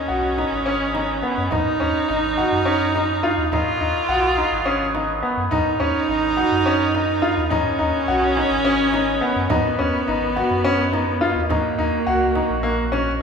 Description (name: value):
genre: contemporary instrumental, chamber music in an uneven meter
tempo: 211 BPM (eighths)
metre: 7/8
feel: straight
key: unclear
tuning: A4 = 440 Hz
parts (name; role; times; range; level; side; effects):
- rich viola; second line; 0.0-13.2 s; Bb3 to F4; -22 LUFS; right 2 dB; none
- warm woodwind section; sustained chords; 0.0-13.2 s; D#3 to Ab4; -28 LUFS; right 1 dB; none
- bright grand piano; arpeggios; 0.1-13.1 s; Bb3 to Gb4; -21 LUFS; left 2 dB; none
- pure sine sub bass; bass; 0.1-13.2 s; Ab1 to Gb2; -28 LUFS; equal; none
- frame drum; percussion; 0.4-13.2 s; none; -32 LUFS; right 3 dB; none
room: wet recital hall reverb, RT60 1.8 s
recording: recorded in a church or concert hall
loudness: -18 LUFS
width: side -6 dB against mid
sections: 0.0-13.2 A section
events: none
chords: 0.0 Db7sus4; 1.5 Badd9; 3.5 Db7sus4 (rootless); 5.5 Badd9; 7.5 Db7sus4; 9.5 Badd9; 11.5 Ebm7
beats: 0.10 0.38 0.67 0.95 1.24 | 1.53 1.81 2.10 2.38 2.67 2.95 3.24 | 3.52 3.81 4.09 4.38 4.67 4.95 5.24 | 5.52 5.80 6.09 6.38 6.66 6.95 7.23 | 7.51 7.80 8.09 8.37 8.65 8.94 9.22 | 9.51 9.79 10.08 10.36 10.65 10.93 11.22 | 11.50 11.79 12.07 12.36 12.64 12.93 13.21